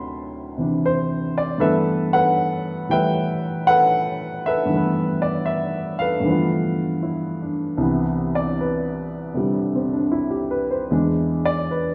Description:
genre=solo jazz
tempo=78 BPM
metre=4/4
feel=swing 68% on 8ths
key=G major, C major from 7.8 s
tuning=A4 = 440 Hz
part: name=warm upright piano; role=solo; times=0.0-11.9 s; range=C2 to C6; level=-22 LUFS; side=equal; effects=none
room=wet recital hall reverb, RT60 1.5 s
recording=recorded in a church or concert hall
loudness=-22 LUFS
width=mono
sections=0.0-7.8 A section; 7.8-11.9 B section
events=upright piano solo 7.8-11.9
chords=0.0 D9; 1.6 G69; 6.2 G13; 7.8 Cmaj7; 10.9 E7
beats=0.06 0.83 | 1.61 2.38 3.15 3.93 | 4.70 5.47 6.25 7.02 | 7.80 8.57 9.35 10.12 | 10.90 11.67

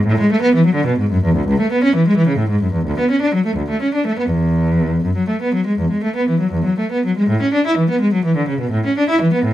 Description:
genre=classical, baroque-style suite movement for unaccompanied cello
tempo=78-89 BPM (dotted quarters)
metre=12/8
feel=rubato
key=A major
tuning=A4 = 440 Hz
part: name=rich cello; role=solo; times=0.0-9.5 s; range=C#2 to E4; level=-14 LUFS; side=equal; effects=none
room=light reverb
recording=minimal, uncompressed stereo recording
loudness=-14 LUFS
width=side -13 dB against mid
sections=0.0-9.5 A section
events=none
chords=none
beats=0.06 0.75 | 1.48 2.17 2.86 3.56 | 4.29 5.04 5.78 6.51 | 7.27 8.00 8.71 9.43

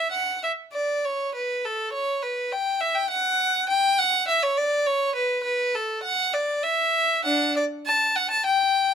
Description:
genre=classical, baroque-style suite movement for unaccompanied violin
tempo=101 BPM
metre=3/4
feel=rubato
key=D major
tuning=A4 = 440 Hz
part: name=rich violin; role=solo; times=0.0-8.9 s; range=D4 to A5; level=-21 LUFS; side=equal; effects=none
room=light reverb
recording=none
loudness=-21 LUFS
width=side -8 dB against mid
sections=0.0-8.9 A section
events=none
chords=none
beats=| 0.12 0.73 1.33 | 1.92 2.51 3.10 | 3.69 4.28 4.86 | 5.45 6.04 6.64 | 7.25 7.86 8.46

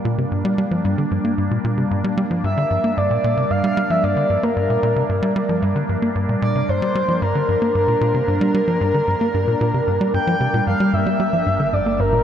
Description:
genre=ambient, sequencer-driven space music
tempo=113 BPM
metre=4/4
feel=straight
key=G dorian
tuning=A4 = 440 Hz
part: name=evolving wavetable pad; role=sustained chords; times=0.0-12.2 s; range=G3 to D4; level=-24 LUFS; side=right 1 dB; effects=chorus, built-in reverb, phaser
part: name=tight sequencer bass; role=riff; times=0.1-12.2 s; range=G2 to Bb3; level=-20 LUFS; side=equal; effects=analog delay
part: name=breathy flute-like synth lead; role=melody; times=2.4-12.2 s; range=Bb4 to G5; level=-20 LUFS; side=equal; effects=lush chorus, analog delay
part: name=analog drone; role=bass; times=11.6-12.2 s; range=G1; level=-30 LUFS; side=equal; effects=chorus
room=wet huge ambient reverb, RT60 8.5 s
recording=none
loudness=-17 LUFS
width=side -9 dB against mid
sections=0.0-10.9 A section; 10.9-12.2 B section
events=none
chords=0.0 Gm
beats=| 0.32 0.85 1.38 1.91 | 2.44 2.97 3.50 4.03 | 4.56 5.09 5.63 6.16 | 6.69 7.22 7.75 8.28 | 8.81 9.34 9.87 10.40 | 10.94 11.47 12.00

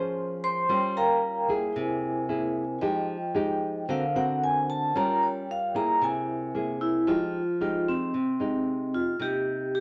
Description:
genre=bossa nova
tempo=113 BPM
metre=4/4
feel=straight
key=F minor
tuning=A4 = 441 Hz
part: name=nylon-string guitar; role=accompaniment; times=0.0-9.8 s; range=C3 to C5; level=-32 LUFS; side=equal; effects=none
part: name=vibraphone with soft mallets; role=accompaniment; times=0.0-7.1 s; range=Db4 to C6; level=-37 LUFS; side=equal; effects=none
part: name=vibraphone with medium mallets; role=melody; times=0.4-9.8 s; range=C4 to C6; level=-28 LUFS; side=equal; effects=none
room=moderate studio reverb, RT60 0.8 s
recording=none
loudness=-27 LUFS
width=mono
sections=0.0-7.1 A section; 7.1-9.8 B section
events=vibraphone solo 0.0-7.1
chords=0.0 Bbm9; 0.7 Gm7b5; 1.8 Caug7; 2.8 Fm9; 3.9 Daug7; 4.9 Gm7b5; 6.0 C7b13; 7.1 Fm9; 9.2 Cm7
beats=0.16 | 0.69 1.22 1.76 2.29 | 2.82 3.35 3.88 4.41 | 4.95 5.48 6.01 6.54 | 7.07 7.61 8.14 8.67 | 9.20 9.73

